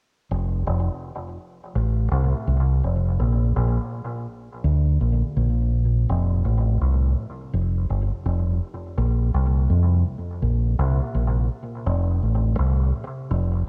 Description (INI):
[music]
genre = reggae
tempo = 83 BPM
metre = 4/4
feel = swing 64% on 16ths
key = F major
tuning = A4 = 441 Hz
[part]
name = deep dub fingered electric bass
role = solo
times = 0.3-13.6 s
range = F1 to F2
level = -22 LUFS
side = equal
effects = tape echo
[sound]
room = light reverb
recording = home recording on cassette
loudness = -23 LUFS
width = mono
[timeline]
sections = 0.3-6.1 A section; 6.1-13.7 B section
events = none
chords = none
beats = | 0.30 1.02 1.75 2.47 | 3.19 3.92 4.64 5.36 | 6.08 6.80 7.53 8.25 | 8.97 9.69 10.41 11.13 | 11.86 12.58 13.30